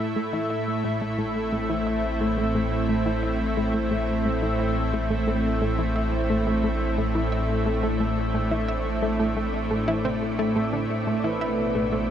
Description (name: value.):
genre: ambient, sequencer-driven space music.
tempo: 88 BPM.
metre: 4/4.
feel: straight.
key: A minor.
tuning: A4 = 440 Hz.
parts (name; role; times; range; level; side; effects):
lush unison pad; sustained chords; 0.0-12.1 s; A2 to E5; -25 LUFS; equal; chorus, shimmer reverb.
round analog bass; bass; 0.0-12.1 s; A1; -30 LUFS; equal; none.
wind-like tuned noise texture; texture; 3.3-12.1 s; D4 to D5; -40 LUFS; left 1 dB; none.
analog pluck; riff; 0.2-12.1 s; A3 to E5; -29 LUFS; equal; chorus, shimmer reverb, tape echo.
expressive portamento lead; melody; 11.2-12.1 s; B4 to C5; -28 LUFS; left 3 dB; lush chorus, cassette tape, shimmer reverb.
room: wet huge ambient reverb, RT60 8.2 s.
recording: none.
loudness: -22 LUFS.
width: side -9 dB against mid.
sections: 0.0-12.1 A section.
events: filter sweep on synth arpeggio sound 0.0-12.1.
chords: 0.0 Am.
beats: 0.68 1.36 2.04 | 2.72 3.40 4.08 4.77 | 5.45 6.13 6.81 7.49 | 8.18 8.86 9.54 10.22 | 10.90 11.58.